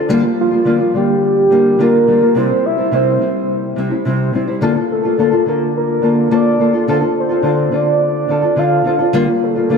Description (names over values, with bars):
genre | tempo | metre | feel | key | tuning
indie pop | 106 BPM | 4/4 | straight | unclear | A4 = 440 Hz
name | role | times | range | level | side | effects
nylon-string guitar | accompaniment | 0.0-9.8 s | C3 to A4 | -14 LUFS | left 1 dB | lush chorus, warbly pitch drift
soft octave-layered synth lead | melody | 0.4-9.8 s | F4 to F5 | -16 LUFS | right 1 dB | tremolo, lush chorus, analog delay
room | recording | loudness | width
wet plate reverb, RT60 3.6 s | dreamy mix soaked in reverb | -12 LUFS | side -5 dB against mid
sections
0.0-9.8 A section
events
none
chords
0.1 Gm7/D; 2.4 C; 4.6 Bbmaj7/D; 6.9 Dm7; 9.1 Gm7/D